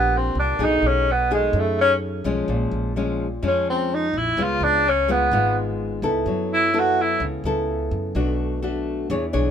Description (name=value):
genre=bossa nova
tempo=127 BPM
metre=4/4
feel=straight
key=F# minor from 6.3 s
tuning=A4 = 440 Hz
part: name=breathy tenor saxophone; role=melody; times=0.0-7.2 s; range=G#3 to F#4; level=-19 LUFS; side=right 1 dB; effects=none
part: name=nylon-string guitar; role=accompaniment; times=0.0-9.5 s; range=F2 to C#5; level=-24 LUFS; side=left 2 dB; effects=none
part: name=upright bass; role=bass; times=0.0-9.5 s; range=Ab1 to F#2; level=-26 LUFS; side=right 1 dB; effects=none
room=little or no reverb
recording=minimal, uncompressed stereo recording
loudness=-19 LUFS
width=side -8 dB against mid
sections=0.0-6.3 A section; 6.3-9.5 A section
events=tenor saxophone solo 0.0-9.5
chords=0.0 Ebmaj7 (rootless); 0.6 B13; 2.5 Bbm7; 4.4 Db7; 6.3 F#m7; 8.2 Bm7